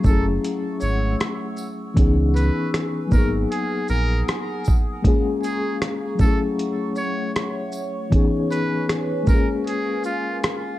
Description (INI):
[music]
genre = lo-fi hip hop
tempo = 78 BPM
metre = 4/4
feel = swing 59% on 16ths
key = unclear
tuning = A4 = 440 Hz
[part]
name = mellow reed electric piano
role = accompaniment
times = 0.0-10.8 s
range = Fb3 to Ab4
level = -24 LUFS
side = left 3 dB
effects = fast tremolo, low-pass filter, plate reverb
[part]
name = warbly tape-like pad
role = sustained chords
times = 0.0-10.8 s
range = A3 to Fb6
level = -32 LUFS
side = right 2 dB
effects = chorus, built-in reverb, phaser, low-pass filter, plate reverb
[part]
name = dusty soul sampler-style drum kit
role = drums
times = 0.0-10.6 s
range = hi-hat, kick drum, rim click, shaker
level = -20 LUFS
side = right 1 dB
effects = none
[part]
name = trumpet with metal mute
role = melody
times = 0.1-10.4 s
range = F4 to Db5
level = -30 LUFS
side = right 2 dB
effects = low-pass filter, tape echo, plate reverb
[part]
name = sub bass with octave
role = bass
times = 0.1-4.2 s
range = Gb1 to Db2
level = -21 LUFS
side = right 1 dB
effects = none
[part]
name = tambourine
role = percussion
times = 0.1-10.3 s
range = none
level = -46 LUFS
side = right 5 dB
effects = none
[sound]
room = moderate studio reverb, RT60 0.6 s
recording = dark, warm production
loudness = -19 LUFS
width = side -15 dB against mid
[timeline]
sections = 0.0-10.8 A section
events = none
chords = 0.0 Gbm7; 2.0 Dbm7; 3.1 Abm7; 5.0 Bbm7; 6.2 Gbm7; 8.1 Dbm7; 9.3 Bbm7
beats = 0.43 1.20 | 1.97 2.73 3.50 4.27 | 5.04 5.81 6.58 7.35 | 8.12 8.89 9.66 10.43